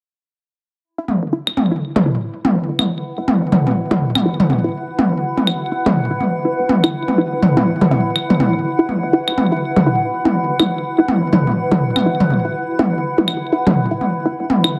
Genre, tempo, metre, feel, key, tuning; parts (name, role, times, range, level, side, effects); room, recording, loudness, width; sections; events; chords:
minimal techno; 123 BPM; 4/4; swing 59% on 16ths; A4 = 444 Hz
granular cloud pad; texture; 1.9-14.8 s; E4 to F#5; -24 LUFS; equal; built-in reverb
resonant blip pluck; riff; 1.0-14.7 s; B3 to E5; -22 LUFS; equal; phaser, delay
electronic toms and claves; percussion; 1.1-14.7 s; -18 LUFS; equal; delay
woody FM bass; bass; 1.2-14.5 s; E1 to E2; -29 LUFS; equal; high-pass filter
moderate lush hall reverb, RT60 1.7 s; -17 LUFS; mono
0.8-14.8 A section
0.8 E5